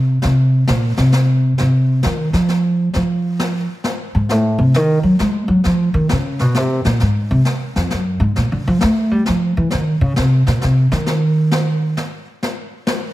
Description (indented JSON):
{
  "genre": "jazz piano trio",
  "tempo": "133 BPM",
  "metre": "3/4",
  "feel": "swing 67% on 8ths",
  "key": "F minor",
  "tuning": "A4 = 440 Hz",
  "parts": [
    { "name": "upright bass", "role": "bass", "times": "0.0-11.9 s", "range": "F2 to A3", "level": "-14 LUFS", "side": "equal", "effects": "none" },
    { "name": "brushed snare drum and snare drum", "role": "drums", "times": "0.2-13.1 s", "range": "none", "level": "-24 LUFS", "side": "left 2 dB", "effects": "none" }
  ],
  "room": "light reverb",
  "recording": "heavily compressed radio sound",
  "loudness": "-14 LUFS",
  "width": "side -16 dB against mid",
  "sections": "0.0-2.9 A section; 2.9-13.1 A section",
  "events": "upright bass solo 0.0-13.1",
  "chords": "none"
}